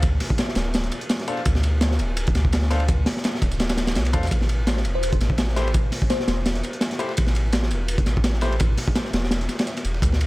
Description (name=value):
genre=drum and bass, jungle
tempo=168 BPM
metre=4/4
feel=swing 55% on 16ths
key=A minor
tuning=A4 = 439 Hz
part: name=soft dub sub bass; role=bass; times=0.0-10.3 s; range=D1 to E2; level=-23 LUFS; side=equal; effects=tube saturation
part: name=crunchy breakbeat drum kit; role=drums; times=0.0-10.3 s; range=kick drum, ride cymbal, snare drum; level=-22 LUFS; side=equal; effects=none
part: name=dusty soul sampler-style drum kit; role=drums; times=0.0-10.3 s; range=hi-hat, snare drum, tambourine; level=-36 LUFS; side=right 2 dB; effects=high-pass filter on snare, high-pass filter on perc, high-pass filter on hats
part: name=bright concert grand piano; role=stabs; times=1.3-8.5 s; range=A3 to F5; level=-32 LUFS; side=left 2 dB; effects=dub echo
part: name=bell-like FM electric piano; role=melody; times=5.0-6.4 s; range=C5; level=-31 LUFS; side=left 3 dB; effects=chorus, phaser, dub echo
room=small room ambience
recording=none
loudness=-20 LUFS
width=side -20 dB against mid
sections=0.0-10.3 A section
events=none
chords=0.0 D7(no3); 4.3 A5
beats=| 0.03 0.39 0.74 1.10 | 1.46 1.81 2.17 2.53 | 2.88 3.24 3.60 3.96 | 4.31 4.67 5.03 5.38 | 5.74 6.10 6.46 6.81 | 7.17 7.53 7.88 8.24 | 8.60 8.96 9.31 9.67 | 10.03